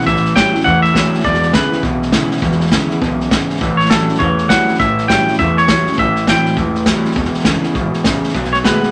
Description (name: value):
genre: rockabilly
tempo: 203 BPM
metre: 4/4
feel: swing 60% on 8ths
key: unclear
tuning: A4 = 442 Hz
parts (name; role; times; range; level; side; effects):
- twangy electric guitar; melody; 0.0-8.9 s; A4 to G5; -18 LUFS; equal; none
- picked steel-string acoustic guitar; accompaniment; 0.0-8.9 s; E2 to F#4; -22 LUFS; equal; none
- electric guitar through a small old amp; riff; 0.0-8.9 s; E2 to G#3; -20 LUFS; equal; none
- vintage drum kit; drums; 0.0-8.9 s; hi-hat, kick drum, snare drum; -20 LUFS; equal; none
- upright bass; bass; 0.1-8.8 s; E1 to E2; -27 LUFS; equal; none
room: moderate studio reverb, RT60 0.7 s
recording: none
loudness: -14 LUFS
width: mono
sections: 0.0-8.9 A section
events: none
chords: 0.1 A7; 1.2 E7; 3.6 A7; 6.0 Am7; 7.2 E7; 8.4 B7